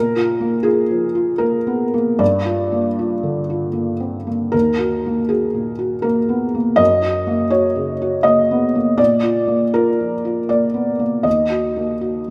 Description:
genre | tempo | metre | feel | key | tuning
neoclassical minimalist piano | 76-83 BPM | 3/4 | rubato | Eb minor | A4 = 441 Hz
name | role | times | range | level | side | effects
felt-muted upright piano | solo | 0.0-12.3 s | Eb2 to Eb5 | -18 LUFS | equal | none
room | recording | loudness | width
moderate lush hall reverb, RT60 2.6 s | rough home demo mix | -18 LUFS | mono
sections
0.0-12.3 A section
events
none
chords
0.0 Bb5; 2.2 Gm7; 4.5 Ebm; 6.8 Gb; 9.0 Bb; 11.3 Ebm

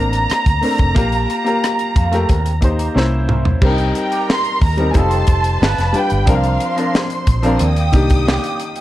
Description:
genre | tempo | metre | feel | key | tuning
lush 1970s-style soul | 90 BPM | 4/4 | straight | unclear | A4 = 440 Hz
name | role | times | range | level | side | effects
dark studio violin section | melody | 0.0-7.0 s | F5 to C6 | -20 LUFS | right 1 dB | none
clear baby grand piano | accompaniment | 0.0-8.8 s | Eb3 to C5 | -20 LUFS | left 2 dB | none
vintage muted fingered electric bass | bass | 0.0-8.4 s | F1 to F2 | -18 LUFS | equal | none
electric guitar through a small old amp | riff | 0.1-8.8 s | Bb3 to B4 | -28 LUFS | right 3 dB | wah
tight funk drum kit | drums | 0.1-8.8 s | crash cymbal, hi-hat, kick drum, rim click, snare drum, toms | -17 LUFS | equal | none
warm studio string section | second line | 3.6-8.8 s | Bb4 to Eb6 | -26 LUFS | equal | none
room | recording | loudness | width
small room ambience | dark, warm production | -13 LUFS | side -14 dB against mid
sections
0.0-3.6 A section; 3.6-8.8 B section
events
drum fill 3.0-3.6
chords
0.0 Bbmaj9; 1.0 Gm9/Bb; 2.3 Eb6; 3.0 C7b9; 3.6 Cm7; 4.9 F9; 5.6 G7; 6.3 C9sus4; 7.6 Ebmaj7

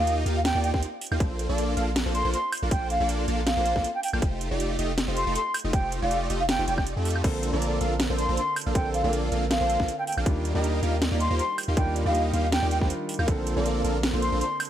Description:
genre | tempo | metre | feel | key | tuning
future bass | 159 BPM | 4/4 | swing 54% on 16ths, half-time | Bb major | A4 = 439 Hz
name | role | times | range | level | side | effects
wooden flute | melody | 0.0-14.6 s | F5 to C6 | -28 LUFS | equal | sidechain pumping, digital delay
supersaw chords | riff | 0.0-14.4 s | A3 to F5 | -30 LUFS | right 1 dB | vintage 12-bit sampler grit, sidechain pumping
long sustained 808-style bass | bass | 0.0-14.4 s | F1 to F2 | -28 LUFS | equal | sidechain pumping
trap drum kit | drums | 0.1-14.7 s | crash cymbal, hi-hat, snare drum, woodblock | -30 LUFS | equal | overdrive
electronic kick drum | drums | 0.7-13.4 s | none | -25 LUFS | equal | overdrive
felt-muted upright piano | accompaniment | 7.2-14.7 s | D3 to Bb4 | -32 LUFS | right 2 dB | sidechain pumping, digital delay
room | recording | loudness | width
light reverb | none | -23 LUFS | side -11 dB against mid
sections
0.0-14.7 A section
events
break 6.9-7.2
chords
0.0 Ebmaj9; 1.2 Bbmaj9; 4.2 F9; 7.2 Bbmaj9; 10.3 Ebmaj9; 13.3 Bbmaj9

